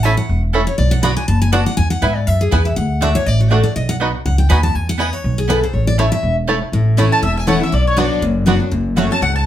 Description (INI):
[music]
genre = bluegrass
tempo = 242 BPM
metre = 4/4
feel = swing 55% on 8ths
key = A major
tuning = A4 = 440 Hz
[part]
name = picked steel-string acoustic guitar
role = accompaniment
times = 0.0-9.5 s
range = E2 to B5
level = -19 LUFS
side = left 2 dB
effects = none
[part]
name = mandolin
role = stabs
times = 0.0-9.1 s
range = A3 to B5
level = -22 LUFS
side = right 3 dB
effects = none
[part]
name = upright bass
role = bass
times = 0.0-9.5 s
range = E1 to G#2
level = -16 LUFS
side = equal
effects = none
[part]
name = bluegrass banjo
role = melody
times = 0.1-9.0 s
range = A3 to F#4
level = -23 LUFS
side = right 2 dB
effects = slapback echo, plate reverb
[part]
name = mandolin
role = melody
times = 7.1-9.5 s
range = C#5 to A5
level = -19 LUFS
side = left 1 dB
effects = plate reverb
[part]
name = clear fiddle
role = second line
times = 7.1-9.5 s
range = C#5 to A5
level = -26 LUFS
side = left 2 dB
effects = none
[sound]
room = moderate studio reverb, RT60 0.6 s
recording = heard from further back in the room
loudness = -13 LUFS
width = side -11 dB against mid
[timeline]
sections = 0.0-6.7 A section; 6.7-9.5 B section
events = steel-string acoustic guitar solo 0.0-6.7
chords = 0.0 Aadd9; 0.8 Bm; 1.8 E; 2.8 D; 3.8 B; 4.8 E; 5.7 A; 7.7 Bm; 8.7 F#m